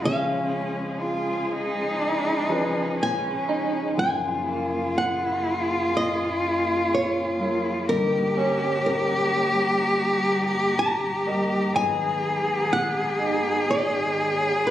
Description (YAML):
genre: acoustic folk-pop ballad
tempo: 62 BPM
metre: 4/4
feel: straight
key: F# major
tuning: A4 = 436 Hz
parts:
  - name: warm cello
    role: second line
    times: 0.0-14.7 s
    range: C#4 to G#4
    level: -25 LUFS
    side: left 1 dB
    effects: none
  - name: warm concert grand piano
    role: accompaniment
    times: 0.0-14.7 s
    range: F#1 to D#5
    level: -31 LUFS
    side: equal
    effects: none
  - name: muted chamber string section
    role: sustained chords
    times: 0.0-14.7 s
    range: C#2 to A#5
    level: -32 LUFS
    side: equal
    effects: none
  - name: flamenco guitar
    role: melody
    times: 0.1-14.7 s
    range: A#4 to A#5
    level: -26 LUFS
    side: left 1 dB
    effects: none
  - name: electric guitar through a small old amp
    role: arpeggios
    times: 3.5-14.7 s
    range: A#3 to D#4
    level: -30 LUFS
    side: right 3 dB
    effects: tremolo
room: wet recital hall reverb, RT60 1.5 s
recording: recorded on a phone in the room, club reverb, compression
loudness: -22 LUFS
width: side -12 dB against mid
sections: 0.0-4.0 A section; 4.0-14.7 B section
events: none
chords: 0.0 C#; 4.0 F#maj7; 7.9 D#/G; 11.7 G#m7